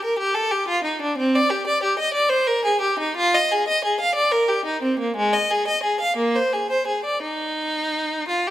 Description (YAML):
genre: classical, baroque-style suite movement for unaccompanied violin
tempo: 59 BPM (dotted quarters)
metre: 6/8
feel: uneven beats, rubato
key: unclear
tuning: A4 = 440 Hz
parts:
  - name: clear violin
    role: solo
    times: 0.0-8.5 s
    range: Ab3 to F5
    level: -19 LUFS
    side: equal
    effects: none
room: moderate recital hall reverb, RT60 1.5 s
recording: none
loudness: -19 LUFS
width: side -13 dB against mid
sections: 0.0-8.5 A section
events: none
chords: none